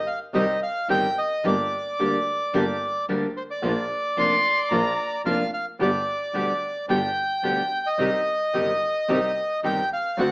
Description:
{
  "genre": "tango",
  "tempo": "110 BPM",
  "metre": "4/4",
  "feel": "rubato",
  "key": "C minor",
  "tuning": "A4 = 438 Hz",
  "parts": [
    { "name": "bandoneon", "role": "melody", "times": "0.0-10.3 s", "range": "C5 to G5", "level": "-24 LUFS", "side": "equal", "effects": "none" },
    { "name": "bandoneon", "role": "stabs", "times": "0.0-10.3 s", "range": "Bb3 to G4", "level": "-33 LUFS", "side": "right 1 dB", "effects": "none" },
    { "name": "clear double bass", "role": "bass", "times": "0.0-10.3 s", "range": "F1 to D2", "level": "-31 LUFS", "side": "equal", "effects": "none" },
    { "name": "nylon-string guitar", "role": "accompaniment", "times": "0.3-10.3 s", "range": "B2 to G4", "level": "-26 LUFS", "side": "equal", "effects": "none" },
    { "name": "warm violin", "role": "second line", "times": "4.2-5.1 s", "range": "Bb5 to C6", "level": "-22 LUFS", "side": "left 1 dB", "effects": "none" }
  ],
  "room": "moderate large studio reverb, RT60 0.9 s",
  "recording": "AM radio sound",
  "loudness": "-21 LUFS",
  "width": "side -27 dB against mid",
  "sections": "0.0-10.3 A section",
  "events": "none",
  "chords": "0.0 Cm; 1.4 Gm; 3.6 Bb; 5.8 G; 8.0 Cm",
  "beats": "0.34 0.89 | 1.45 1.99 2.54 3.08 | 3.63 4.17 4.71 5.25 | 5.79 6.34 6.88 7.43 | 7.99 8.54 9.09 9.63 | 10.18"
}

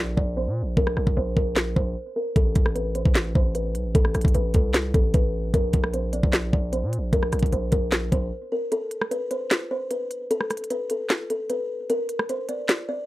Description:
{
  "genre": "hip hop, trap",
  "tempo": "151 BPM",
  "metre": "4/4",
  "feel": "half-time",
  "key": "unclear",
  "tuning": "A4 = 440 Hz",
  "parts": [
    { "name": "buzzing kalimba", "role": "melody", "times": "0.0-13.1 s", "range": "A4 to D5", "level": "-27 LUFS", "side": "equal", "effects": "low-pass filter, plate reverb" },
    { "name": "distorted 808-style bass", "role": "bass", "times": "0.0-8.3 s", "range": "A1 to Bb2", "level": "-26 LUFS", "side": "equal", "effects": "distortion" },
    { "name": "trap drum kit", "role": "drums", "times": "0.2-12.8 s", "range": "handclaps, hi-hat, kick drum, rim click, snare drum", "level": "-22 LUFS", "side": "equal", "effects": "none" }
  ],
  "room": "moderate studio reverb, RT60 0.5 s",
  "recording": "dark, warm production",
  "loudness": "-22 LUFS",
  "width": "side -17 dB against mid",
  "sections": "0.0-13.1 A section",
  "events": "break 0.0-2.4, 8.3-8.7, 8.7-13.1; filter sweep on kalimba 0.0-8.7",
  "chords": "0.0 N.C.; 2.4 Asus2; 5.5 N.C.",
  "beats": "0.37 | 0.77 1.17 1.56 1.96 | 2.36 2.76 3.15 3.55 | 3.95 4.35 4.74 5.14 | 5.54 5.94 6.33 6.73 | 7.13 7.53 7.92 8.32 | 8.72 9.11 9.51 9.91 | 10.31 10.70 11.10 11.50 | 11.90 12.29 12.69"
}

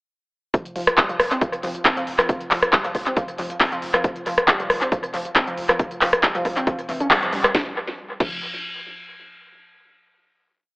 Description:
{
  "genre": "driving peak-time techno",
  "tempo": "137 BPM",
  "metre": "4/4",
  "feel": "straight",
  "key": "unclear",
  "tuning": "A4 = 440 Hz",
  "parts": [
    { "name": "warbly dusty pluck", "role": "riff", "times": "0.5-8.4 s", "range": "E3 to Db4", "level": "-28 LUFS", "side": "equal", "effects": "analog chorus, sidechain pumping, tape echo" },
    { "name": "electronic kick drum", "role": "drums", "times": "0.5-8.3 s", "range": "none", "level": "-23 LUFS", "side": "equal", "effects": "none" },
    { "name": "techno drum kit", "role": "drums", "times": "0.5-8.3 s", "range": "crash cymbal, handclaps, hi-hat, rim click, snare drum", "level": "-20 LUFS", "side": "equal", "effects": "sidechain pumping on hats, sidechain pumping on cymbals, tape echo" },
    { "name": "saturated sub bass", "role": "bass", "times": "0.7-8.4 s", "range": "F1", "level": "-47 LUFS", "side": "equal", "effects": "overdrive, sidechain pumping, low-pass filter" }
  ],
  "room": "moderate plate reverb, RT60 1.8 s",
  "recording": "echo-heavy mix, telephone sound",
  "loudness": "-19 LUFS",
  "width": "side -25 dB against mid",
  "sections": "0.5-7.5 drop; 7.5-9.3 final chord",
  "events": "drop 0.5-7.5; band accent 7.1",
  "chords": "0.5 F5; 7.5 N.C.",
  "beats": "| 0.54 0.98 1.41 1.85 | 2.29 2.73 3.17 3.60 | 4.04 4.48 4.92 5.36 | 5.79 6.23 6.67 7.11 | 7.55 7.98"
}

